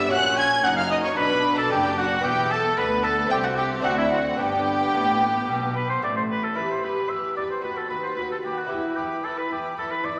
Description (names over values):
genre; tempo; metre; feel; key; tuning
classical, baroque-style concerto movement with solo episodes; 112 BPM; 4/4; straight; G major, E minor from 6.6 s; A4 = 440 Hz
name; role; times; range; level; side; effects
rich chamber violin section; melody; 0.0-10.2 s; E5 to Ab6; -30 LUFS; equal; none
rich chamber violin section; second line; 0.0-10.2 s; E4 to Ab5; -33 LUFS; equal; none
lute; accompaniment; 0.0-10.2 s; D2 to G4; -33 LUFS; equal; none
warm studio viola section; accompaniment; 0.0-10.2 s; B3 to G4; -33 LUFS; equal; none
rich chamber cello section; bass; 0.0-10.1 s; C2 to B2; -38 LUFS; equal; none
rich chamber double bass section; bass; 0.0-6.6 s; E1 to D2; -37 LUFS; equal; none
warm oboe; melody; 0.1-10.2 s; E4 to Ab5; -28 LUFS; equal; none
room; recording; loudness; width
wet recital hall reverb, RT60 1.6 s; none; -24 LUFS; mono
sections
0.0-6.6 A section; 6.6-10.2 B section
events
none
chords
0.1 F#/A#; 1.2 Bm; 2.2 E5; 3.3 Am7/C; 3.8 D7; 4.4 G; 6.6 Em; 7.6 B/D#; 8.7 Em